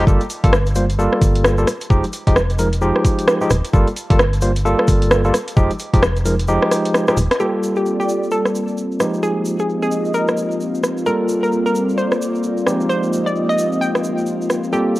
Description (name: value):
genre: UK garage, two-step garage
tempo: 131 BPM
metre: 4/4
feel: swing 61% on 16ths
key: unclear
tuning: A4 = 440 Hz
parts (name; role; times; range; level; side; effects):
- barky tine electric piano; stabs; 0.0-15.0 s; F3 to C5; -20 LUFS; equal; overdrive, auto-pan, low-pass filter, cassette tape
- organ-like FM bass; bass; 0.0-7.3 s; Eb1 to G1; -18 LUFS; equal; none
- electronic kick drum; drums; 0.1-6.0 s; none; -15 LUFS; equal; overdrive, small room ambience, cassette tape
- egg shaker; percussion; 0.1-15.0 s; none; -36 LUFS; right 1 dB; none
- garage drum kit; drums; 0.2-14.6 s; hi-hat, rim click; -19 LUFS; equal; overdrive, low-pass filter on hats, small room ambience, cassette tape, low-pass filter on snare
- hollow square pluck; melody; 7.4-14.9 s; G4 to G5; -22 LUFS; equal; chorus, cassette tape, tape echo
- airy breathy pad; texture; 7.4-15.0 s; G3 to Eb5; -21 LUFS; left 1 dB; chorus, sidechain pumping, cassette tape
room: light reverb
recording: home recording on cassette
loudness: -15 LUFS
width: side -18 dB against mid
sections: 0.0-7.4 A section; 7.4-15.0 B section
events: filter sweep on tine electric piano 0.0-7.4; kick drops out 6.5-7.4; drum fill 6.7-7.4; band accent 7.3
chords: 0.1 Gm9; 1.7 Fm9; 3.7 Gm9; 5.3 Fm9; 7.4 Gm9; 9.0 Fm9; 11.1 Gm9; 12.7 Fm9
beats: | 0.07 0.53 0.99 1.45 | 1.90 2.36 2.82 3.28 | 3.73 4.19 4.65 5.11 | 5.57 6.03 6.48 6.94 | 7.40 7.86 8.31 8.77 | 9.23 9.69 10.15 10.61 | 11.06 11.52 11.98 12.44 | 12.90 13.35 13.81 14.27 | 14.73